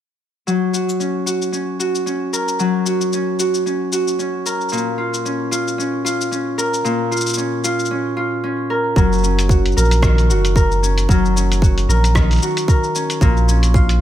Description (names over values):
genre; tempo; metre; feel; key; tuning
folktronica; 113 BPM; 4/4; swing 56% on 16ths; F# major; A4 = 440 Hz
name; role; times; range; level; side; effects
Celtic harp; arpeggios; 0.5-14.0 s; A#2 to A#4; -18 LUFS; left 1 dB; low-pass filter, digital delay
lo-fi sampler-style drum kit; drums; 0.5-14.0 s; hi-hat, rim click, shaker; -25 LUFS; left 3 dB; small room ambience
warm sub bass; bass; 9.0-14.0 s; F#1 to A#1; -15 LUFS; equal; none
electronic kick drum; drums; 9.0-13.9 s; none; -15 LUFS; equal; small room ambience
room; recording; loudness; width
little or no reverb; none; -15 LUFS; side -11 dB against mid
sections
0.5-9.0 A section; 9.0-14.0 B section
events
filter sweep on harp 0.5-9.0, 9.0-14.0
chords
0.5 F#; 4.7 A#m; 9.0 F#6; 13.2 A#m